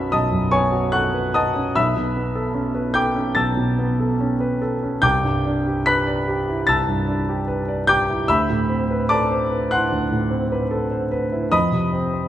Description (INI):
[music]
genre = classical, impressionist solo piano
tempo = 74 BPM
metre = 4/4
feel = rubato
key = unclear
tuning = A4 = 440 Hz
[part]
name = warm concert grand piano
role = solo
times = 0.0-12.3 s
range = B1 to B6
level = -18 LUFS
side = equal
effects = none
[sound]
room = moderate concert hall reverb, RT60 2.4 s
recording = none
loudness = -18 LUFS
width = side -12 dB against mid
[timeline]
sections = 0.0-12.3 A section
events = none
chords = 0.0 B9; 1.8 Aadd9/B; 5.0 Cmaj9; 8.3 D13; 11.5 F7(no3)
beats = 0.13 0.94 | 1.77 2.57 3.36 4.21 | 5.04 5.85 6.66 7.45 | 8.28 9.10 9.91 10.71 | 11.53